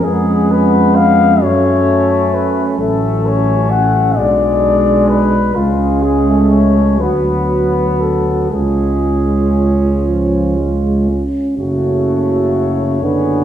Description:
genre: classical, hymn-like piece for brass band.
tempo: 38-44 BPM (dotted quarters).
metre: 6/8.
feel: rubato.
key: F# minor.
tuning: A4 = 440 Hz.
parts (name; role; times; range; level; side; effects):
mellow flugelhorn; melody; 0.0-13.4 s; E#4 to F#5; -17 LUFS; left 7 dB; none.
clear trombone section; accompaniment; 0.0-13.4 s; G#3 to C#4; -21 LUFS; left 2 dB; none.
mellow euphonium; accompaniment; 0.0-13.4 s; C#3 to C#4; -17 LUFS; right 2 dB; none.
dark tuba; bass; 0.0-13.4 s; F#1 to F#2; -17 LUFS; equal; none.
mellow French horn section; second line; 0.1-13.4 s; C#4 to G#4; -19 LUFS; right 5 dB; none.
room: wet recital hall reverb, RT60 1.4 s.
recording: heard from further back in the room.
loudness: -11 LUFS.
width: side -10 dB against mid.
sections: 0.0-11.6 A section; 11.6-13.4 B section.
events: none.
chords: 0.0 C#7/E#; 1.4 F#m; 2.8 F#m/A; 4.2 G#dim/B; 5.6 C#5; 7.0 Bm/D; 8.5 C#; 11.6 F#m.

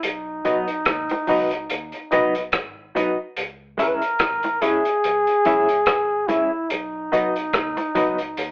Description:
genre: roots reggae.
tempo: 72 BPM.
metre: 4/4.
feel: swing 56% on 16ths.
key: unclear.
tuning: A4 = 439 Hz.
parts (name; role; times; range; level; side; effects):
breathy flugelhorn; melody; 0.0-8.5 s; D#4 to B4; -22 LUFS; equal; none.
vintage muted fingered electric bass; bass; 0.0-8.5 s; G#1 to D#2; -45 LUFS; equal; none.
vintage drum kit; drums; 0.0-8.5 s; hi-hat, kick drum, rim click; -25 LUFS; equal; none.
barky reed electric piano; stabs; 0.4-8.2 s; D#4 to E5; -21 LUFS; left 1 dB; overdrive, fast tremolo.
clean electric guitar; accompaniment; 0.5-8.2 s; F#3 to E4; -26 LUFS; right 1 dB; tremolo.
bongos; percussion; 0.9-7.9 s; none; -32 LUFS; equal; none.
room: moderate studio reverb, RT60 0.6 s.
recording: band playing live in one room, telephone sound.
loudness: -19 LUFS.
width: side -23 dB against mid.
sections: 0.0-8.5 A section.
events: none.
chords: 0.0 B; 3.4 C#m; 6.7 B.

